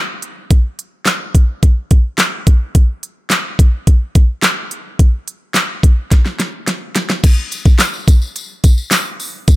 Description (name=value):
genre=pop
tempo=107 BPM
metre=4/4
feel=straight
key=none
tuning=none
part: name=pop drum kit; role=drums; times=0.2-9.6 s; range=crash cymbal, handclaps, hi-hat, kick drum, snare drum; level=-11 LUFS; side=equal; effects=none
part: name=tambourine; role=percussion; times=7.2-9.6 s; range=none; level=-26 LUFS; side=left 4 dB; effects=none
room=digital ambience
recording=none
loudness=-12 LUFS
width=side -18 dB against mid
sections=0.0-7.2 A section; 7.2-9.6 B section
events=drum fill 6.1-7.2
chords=none